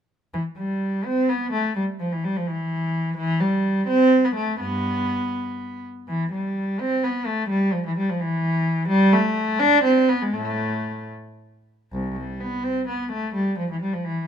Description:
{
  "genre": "classical, baroque-style suite movement for unaccompanied cello",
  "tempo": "72-87 BPM (dotted quarters)",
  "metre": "6/8",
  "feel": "rubato",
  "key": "A minor from 8.9 s",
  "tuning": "A4 = 438 Hz",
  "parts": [
    { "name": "warm cello", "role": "solo", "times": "0.3-14.3 s", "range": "C2 to D4", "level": "-20 LUFS", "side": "equal", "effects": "none" }
  ],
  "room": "light reverb",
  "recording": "close, detailed microphones",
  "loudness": "-20 LUFS",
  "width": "side -8 dB against mid",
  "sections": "0.3-11.9 A section; 11.9-14.3 A section",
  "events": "none",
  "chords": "none"
}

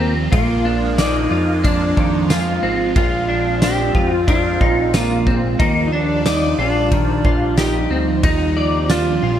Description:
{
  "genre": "dream pop",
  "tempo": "91 BPM",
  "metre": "4/4",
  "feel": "straight",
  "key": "Eb major",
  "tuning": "A4 = 440 Hz",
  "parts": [
    { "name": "pedal steel guitar", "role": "melody", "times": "0.0-9.4 s", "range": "Bb3 to G4", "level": "-20 LUFS", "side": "right 1 dB", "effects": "wide subtle chorus" },
    { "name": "phased analog pad", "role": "sustained chords", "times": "0.0-9.4 s", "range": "F3 to D5", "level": "-24 LUFS", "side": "right 4 dB", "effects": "phaser, chorus" },
    { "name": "clean electric guitar", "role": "arpeggios", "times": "0.0-9.4 s", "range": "Eb3 to D5", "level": "-22 LUFS", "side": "left 3 dB", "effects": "ensemble chorus, digital delay" },
    { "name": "fat analog bass", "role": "bass", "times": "0.0-9.4 s", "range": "Ab1 to F2", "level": "-22 LUFS", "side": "equal", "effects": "none" },
    { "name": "loose indie drum kit", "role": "drums", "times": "0.3-9.1 s", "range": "kick drum, ride cymbal, snare drum, tambourine", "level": "-21 LUFS", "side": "equal", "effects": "none" }
  ],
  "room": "light reverb, studio reverb",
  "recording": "bright 1980s-style digital production",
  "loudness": "-14 LUFS",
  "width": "side -10 dB against mid",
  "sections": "0.0-9.4 A section",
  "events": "none",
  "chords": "0.3 Bb7; 5.6 Ebmaj9"
}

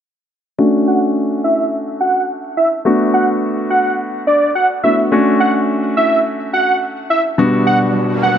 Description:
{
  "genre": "pop",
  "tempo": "106 BPM",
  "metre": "4/4",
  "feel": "straight",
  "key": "D major",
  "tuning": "A4 = 440 Hz",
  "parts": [
    { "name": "warm concert grand piano", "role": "accompaniment", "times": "0.6-8.4 s", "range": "B2 to F#4", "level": "-16 LUFS", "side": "left 1 dB", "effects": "low-pass filter" },
    { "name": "wide unison lead", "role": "melody", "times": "0.9-8.4 s", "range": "D5 to F#5", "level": "-16 LUFS", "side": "right 1 dB", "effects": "low-pass filter" },
    { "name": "riser", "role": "sound effects", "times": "7.9-8.4 s", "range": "none", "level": "-24 LUFS", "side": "right 2 dB", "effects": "none" }
  ],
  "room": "light reverb",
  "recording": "none",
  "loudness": "-13 LUFS",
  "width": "side -9 dB against mid",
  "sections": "0.6-8.4 A section",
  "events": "filter sweep 0.6-8.4; riser 7.9-8.4",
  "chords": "0.6 Dmaj7; 2.9 Bm7; 5.1 Dmaj7/A; 7.4 Gmaj7/B"
}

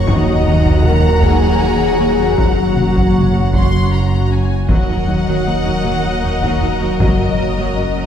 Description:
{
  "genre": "cinematic, hybrid orchestral and electronic film score",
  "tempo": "52 BPM (dotted quarters)",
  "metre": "6/8",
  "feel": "straight",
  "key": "Eb minor",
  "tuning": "A4 = 440 Hz",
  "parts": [
    { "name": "warm symphonic violin section", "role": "melody", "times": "0.0-8.1 s", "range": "Eb5 to Bb5", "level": "-25 LUFS", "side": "left 4 dB", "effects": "none" },
    { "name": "rich studio violin section", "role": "second line", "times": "0.0-8.1 s", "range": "Bb4 to C6", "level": "-24 LUFS", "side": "left 2 dB", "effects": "none" },
    { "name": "warm symphonic viola section", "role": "accompaniment", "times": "0.0-8.0 s", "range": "Gb3 to Gb4", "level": "-24 LUFS", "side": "right 2 dB", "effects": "none" },
    { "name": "analog drone", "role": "sustained chords", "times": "0.0-8.1 s", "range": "Gb3 to Gb5", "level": "-23 LUFS", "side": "equal", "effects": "chorus" },
    { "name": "mellow French horn section", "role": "sustained chords", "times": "0.0-8.1 s", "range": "Bb3 to Bb4", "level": "-21 LUFS", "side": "left 2 dB", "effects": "none" },
    { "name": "sub bass with octave", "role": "bass", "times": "0.0-8.1 s", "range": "Eb1 to Gb1", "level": "-24 LUFS", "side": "equal", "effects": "none" },
    { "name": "warm symphonic cello section", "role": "bass", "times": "0.0-8.0 s", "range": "Eb2 to Gb2", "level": "-20 LUFS", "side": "right 2 dB", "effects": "none" },
    { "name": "warm symphonic double bass section", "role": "bass", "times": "0.0-7.8 s", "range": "Gb1 to Eb2", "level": "-21 LUFS", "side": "right 2 dB", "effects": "none" },
    { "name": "harp-like synth pluck", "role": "arpeggios", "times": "0.1-8.1 s", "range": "Eb3 to Gb4", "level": "-22 LUFS", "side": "left 3 dB", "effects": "chorus, ping-pong delay" },
    { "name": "taiko ensemble", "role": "drums", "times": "0.1-7.7 s", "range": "none", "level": "-18 LUFS", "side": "equal", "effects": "none" }
  ],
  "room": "wet concert hall reverb, RT60 1.9 s",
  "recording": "heard from further back in the room",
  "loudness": "-12 LUFS",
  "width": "side -9 dB against mid",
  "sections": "0.0-4.7 A section; 4.7-8.1 B section",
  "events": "none",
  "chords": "0.1 Ebm; 2.4 Gb; 4.7 Ebm; 7.0 Gb"
}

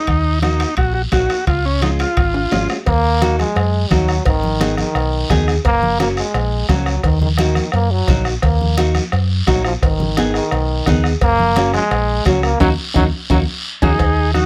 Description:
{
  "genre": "latin, cumbia",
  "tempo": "172 BPM",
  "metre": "4/4",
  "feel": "straight",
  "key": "Eb minor",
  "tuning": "A4 = 440 Hz",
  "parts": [
    { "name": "combo organ", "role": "melody", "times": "0.0-2.7, 13.8-14.5 s", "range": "Db4 to Ab4", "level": "-22 LUFS", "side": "equal", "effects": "none" },
    { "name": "hollow-body short-scale fingered electric bass", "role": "bass", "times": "0.1-14.5 s", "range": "Gb1 to Gb2", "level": "-21 LUFS", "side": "equal", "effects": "none" },
    { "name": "bombo", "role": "percussion", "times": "0.1-14.5 s", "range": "none", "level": "-22 LUFS", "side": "equal", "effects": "none" },
    { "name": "congas", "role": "percussion", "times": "0.1-14.5 s", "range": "none", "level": "-27 LUFS", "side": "equal", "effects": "none" },
    { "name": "guiro", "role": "percussion", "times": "0.1-14.5 s", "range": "none", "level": "-32 LUFS", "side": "equal", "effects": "none" },
    { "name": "timbales and cowbell", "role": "percussion", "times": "0.1-14.2 s", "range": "none", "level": "-28 LUFS", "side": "equal", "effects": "none" },
    { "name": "nylon-string guitar", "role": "accompaniment", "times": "0.4-14.5 s", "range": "Ab3 to Ab4", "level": "-23 LUFS", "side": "equal", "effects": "none" },
    { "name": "warm trombone", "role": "second line", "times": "2.9-13.9 s", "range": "Eb3 to Bb3", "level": "-22 LUFS", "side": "equal", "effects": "none" }
  ],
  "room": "little or no reverb",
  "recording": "close, detailed microphones",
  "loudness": "-16 LUFS",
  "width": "mono",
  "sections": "0.0-2.9 A section; 2.9-14.0 B section",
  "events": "drum fill 2.3-2.9, 12.6-14.0; trombone solo 2.9-14.0; band accent 12.6-14.0",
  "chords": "0.1 Ebm; 1.5 Db; 2.9 Ebm; 4.3 Abm; 5.6 Gb; 7.0 Ebm; 9.8 Abm; 11.2 Gb; 12.6 Ebm"
}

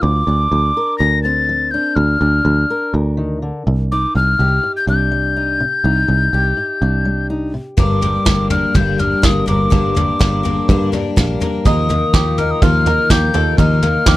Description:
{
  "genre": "indie folk with a building arrangement",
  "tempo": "124 BPM",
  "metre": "4/4",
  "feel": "straight",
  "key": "G minor",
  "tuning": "A4 = 440 Hz",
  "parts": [
    { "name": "mellow hollow tin whistle", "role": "melody", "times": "0.0-14.2 s", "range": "D6 to Bb6", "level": "-18 LUFS", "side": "left 2 dB", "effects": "none" },
    { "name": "fingerpicked steel-string acoustic guitar", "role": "accompaniment", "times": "0.0-14.2 s", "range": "G2 to Bb4", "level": "-22 LUFS", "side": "left 1 dB", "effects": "none" },
    { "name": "picked electric bass", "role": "bass", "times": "0.0-14.2 s", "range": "G1 to G2", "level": "-17 LUFS", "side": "right 1 dB", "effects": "none" },
    { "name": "picked twelve-string acoustic guitar", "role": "accompaniment", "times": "7.8-14.2 s", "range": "G2 to Bb4", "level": "-22 LUFS", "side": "left 5 dB", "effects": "none" },
    { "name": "vintage brush drum kit", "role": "drums", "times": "7.8-14.2 s", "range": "kick drum, snare drum, toms", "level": "-16 LUFS", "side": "equal", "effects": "none" },
    { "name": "bluegrass banjo", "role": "arpeggios", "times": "11.7-14.2 s", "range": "Eb4 to Bb4", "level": "-24 LUFS", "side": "right 10 dB", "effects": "none" }
  ],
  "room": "little or no reverb",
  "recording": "none",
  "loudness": "-13 LUFS",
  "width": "side -16 dB against mid",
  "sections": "0.0-7.8 A section; 7.8-14.2 B section",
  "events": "none",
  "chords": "0.0 Bbadd9/D; 3.7 Cmadd9; 7.8 Gm; 11.7 Ebsus2"
}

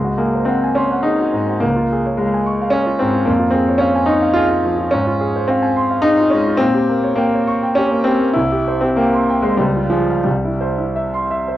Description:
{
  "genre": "classical, romantic character piece for solo piano",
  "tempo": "86-114 BPM",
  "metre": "3/4",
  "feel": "rubato",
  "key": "Db major, F minor from 4.9 s",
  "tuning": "A4 = 440 Hz",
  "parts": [
    { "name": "clear concert grand piano", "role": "solo", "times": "0.0-11.6 s", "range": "C2 to Db6", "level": "-14 LUFS", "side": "equal", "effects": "none" }
  ],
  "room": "moderate large studio reverb, RT60 0.9 s",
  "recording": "worn, warbling old tape, cassette tape, warbly pitch drift",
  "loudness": "-14 LUFS",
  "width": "side -13 dB against mid",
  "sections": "0.0-11.6 A section",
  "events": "none",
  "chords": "0.0 Ab7/Db; 1.6 Db; 3.3 Db/F; 4.9 Fm/Ab; 6.6 Gdim/Bb; 8.4 C5; 9.6 Db; 10.2 C"
}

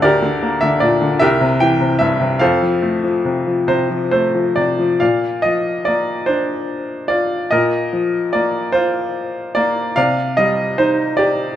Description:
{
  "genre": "classical, lyrical solo piano",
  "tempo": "45-51 BPM (dotted quarters)",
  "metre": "6/8",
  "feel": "rubato",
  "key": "F major, Bb major from 5.0 s",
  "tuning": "A4 = 440 Hz",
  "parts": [
    { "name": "bright upright piano", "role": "solo", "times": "0.0-11.6 s", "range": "C2 to G5", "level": "-14 LUFS", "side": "equal", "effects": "none" }
  ],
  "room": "moderate recital hall reverb, RT60 1.7 s",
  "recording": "minimal, uncompressed stereo recording",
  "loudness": "-15 LUFS",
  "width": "side -11 dB against mid",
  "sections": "0.0-5.0 A section; 5.0-11.6 B section",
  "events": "none",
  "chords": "0.0 Gm/D; 1.2 C7; 2.4 F; 5.0 Bbadd9; 10.0 Cmadd9"
}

